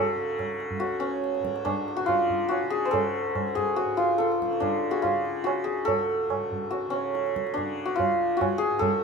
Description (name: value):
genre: indian classical, Hindustani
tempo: 142 BPM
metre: 7/4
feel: straight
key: C# raga bhairav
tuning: A4 = 440 Hz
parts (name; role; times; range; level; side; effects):
- santur; melody; 0.0-9.0 s; C#4 to B#4; -25 LUFS; equal; none
- tanpura; drone; 0.0-9.0 s; C#2 to C#3; -37 LUFS; equal; none
- tabla; percussion; 0.4-9.0 s; none; -32 LUFS; right 5 dB; none
room: light reverb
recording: minimal, uncompressed stereo recording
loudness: -24 LUFS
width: side -5 dB against mid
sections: 0.0-9.0 A section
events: none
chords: none